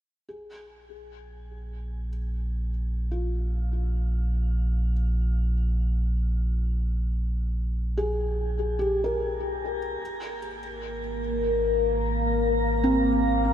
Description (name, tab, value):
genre	ambient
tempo	74 BPM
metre	3/4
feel	straight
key	unclear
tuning	A4 = 441 Hz
part	felt-muted upright piano	arpeggios	0.3-13.5 s	C4 to Bb4	-30 LUFS	equal	ping-pong delay
part	warm sub bass	bass	0.3-13.5 s	Ab1 to Bb1	-27 LUFS	equal	none
part	overtone-sweeping drone	drone	10.8-13.5 s	Bb3	-25 LUFS	left 2 dB	chorus, built-in reverb, phaser
room	light reverb, small room ambience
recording	none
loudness	-24 LUFS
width	side -10 dB against mid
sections	0.3-13.5 A section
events	fade-in on felt piano 0.3-13.5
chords	0.3 Bb5; 10.0 Abmaj7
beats	| 0.28 1.08 1.90 | 2.71 3.52 4.33 | 5.14 5.95 6.76 | 7.57 8.38 9.19 | 10.00 10.81 11.63 | 12.44 13.25